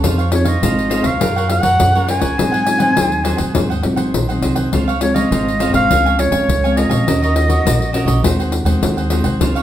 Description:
samba and choro; 103 BPM; 4/4; straight; A4 = 441 Hz
cavaquinho; accompaniment; 0.0-9.6 s; Eb4 to Ab5; -25 LUFS; right 5 dB
nylon-string guitar; accompaniment; 0.0-9.6 s; Ab2 to Ab4; -20 LUFS; left 1 dB
upright bass; bass; 0.0-9.6 s; Ab1 to Ab2; -18 LUFS; right 1 dB
pandeiro; percussion; 0.0-9.6 s; -20 LUFS; left 4 dB
breathy clarinet; melody; 0.3-8.5 s; Db5 to Ab5; -18 LUFS; equal
wet studio reverb, RT60 0.6 s; heard from further back in the room; -13 LUFS; side -12 dB against mid
0.0-9.6 A section
0.0 Dbmaj9/F; 1.2 Gbmaj9; 2.4 Ab7; 4.7 Dbmaj7; 5.9 Bbm9/Db; 7.1 Ebm7; 8.2 Ab7/Eb

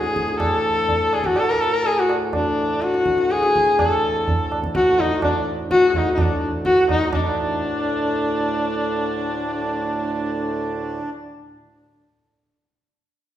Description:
indian classical, Hindustani; 125 BPM; 7/4; straight; A4 = 440 Hz
warm sarangi; melody; 0.0-11.0 s; D4 to Bb4; -20 LUFS; left 2 dB
hand-pumped harmonium; second line; 0.0-11.1 s; D4 to Bb4; -28 LUFS; right 2 dB
pedal harmonium; drone; 0.0-11.0 s; D2 to A2; -28 LUFS; right 2 dB
tabla; percussion; 0.0-7.3 s; -26 LUFS; right 2 dB
wet recital hall reverb, RT60 1.5 s; heard from further back in the room; -18 LUFS; side -11 dB against mid
0.0-7.1 A section; 7.1-10.4 B section
speeding up 0.0-10.4

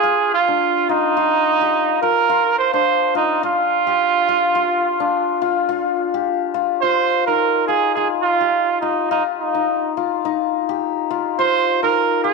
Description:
afrobeat; 106 BPM; 4/4; swing 55% on 16ths; A4 = 440 Hz
warm trumpet; melody; 0.0-12.3 s; Eb4 to C5; -17 LUFS; right 8 dB
hammered dulcimer; arpeggios; 0.0-12.3 s; D4 to G4; -20 LUFS; left 12 dB
wet echo chamber reverb, RT60 1.6 s, small room ambience; 1960s-style stereo with parts hard left and right; -16 LUFS; side -3 dB against mid
0.0-6.8 A section; 6.8-12.3 B section
0.0 Fsus2; 6.8 F7sus2

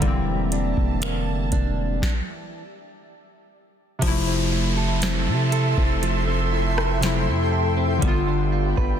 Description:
contemporary R&B; 60 BPM; 4/4; straight; A4 = 441 Hz
warm analog keys; accompaniment; 0.0-9.0 s; C3 to F4; -26 LUFS; left 3 dB; chorus
granular cloud pad; sustained chords; 0.0-9.0 s; G4 to C6; -29 LUFS; equal; built-in reverb
direct-recorded clean electric guitar; arpeggios; 0.0-9.0 s; E3 to B4; -30 LUFS; right 9 dB; wide subtle chorus, ping-pong delay
long sustained 808-style bass; bass; 0.0-9.0 s; E1 to C3; -24 LUFS; equal
booming analog drum machine; drums; 0.0-9.0 s; crash cymbal, finger snaps, hi-hat, kick drum, rim click, snare drum; -25 LUFS; equal; soft clipping on snare
downlifter; sound effects; 4.0-9.0 s; -32 LUFS; equal
digital ambience; dense, heavily limited modern master; -20 LUFS; side -9 dB against mid
0.0-4.0 A section; 4.0-9.0 B section
stop 2.0-4.0
0.0 Em7b5; 4.0 Fmaj7; 8.0 G7

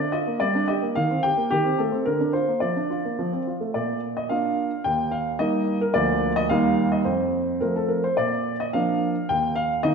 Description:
classical-period piano sonatina; 108 BPM; 2/4; straight; Bb major; A4 = 442 Hz
clear baby grand piano; solo; 0.0-9.9 s; D2 to G5; -21 LUFS; equal
wet recital hall reverb, RT60 1.6 s; heard from further back in the room; -21 LUFS; side -5 dB against mid
0.0-3.7 A section; 3.7-9.9 B section
0.4 Gm; 1.0 Cm7/Eb; 1.5 Am7b5/Eb; 2.1 Bb/D; 2.6 Bb/F; 3.2 F; 3.7 Bb; 4.9 Eb; 5.9 Bb/D; 6.5 Eb; 7.1 F; 8.2 Bb; 9.3 Eb5

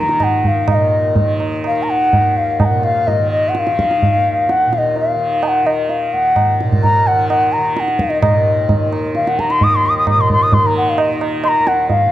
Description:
indian classical, Hindustani; 128 BPM; 4/4; straight; Eb raga shivaranjani; A4 = 437 Hz
mellow bansuri; melody; 0.0-12.1 s; Eb5 to Eb6; -15 LUFS; left 1 dB
tanpura; drone; 0.0-12.1 s; Eb2 to Eb3; -22 LUFS; right 1 dB
tabla; percussion; 0.1-12.1 s; -18 LUFS; right 2 dB
moderate recital hall reverb, RT60 1.6 s; dark, warm production; -13 LUFS; side -13 dB against mid
0.7-8.2 A section; 8.2-12.1 B section
speeding up 0.0-12.1

